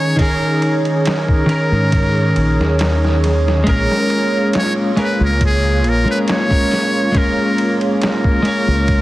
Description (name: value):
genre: trip hop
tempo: 69 BPM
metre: 4/4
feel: straight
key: Bb minor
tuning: A4 = 441 Hz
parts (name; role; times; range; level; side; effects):
- trumpet with metal mute; melody; 0.0-9.0 s; Ab4 to Db5; -20 LUFS; equal; tape echo
- clean electric guitar; accompaniment; 0.0-9.0 s; Eb3 to Db5; -18 LUFS; equal; tremolo, tape echo
- dark analog pad; sustained chords; 0.0-9.0 s; Bb3 to Db5; -20 LUFS; right 1 dB; chorus
- trip hop sampler-style drum kit; drums; 0.2-9.0 s; hi-hat, kick drum, ride cymbal, snare drum; -21 LUFS; equal; vintage 12-bit sampler grit
- deep dub fingered electric bass; bass; 1.7-9.0 s; Bb1 to Ab2; -16 LUFS; equal; none
room: light reverb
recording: heavily compressed radio sound, multiband compression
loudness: -13 LUFS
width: side -17 dB against mid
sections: 0.0-9.0 A section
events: none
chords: 0.0 Eb7sus4; 3.7 Bbm7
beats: | 0.18 1.05 1.92 2.79 | 3.66 4.53 5.40 6.27 | 7.14 8.01 8.88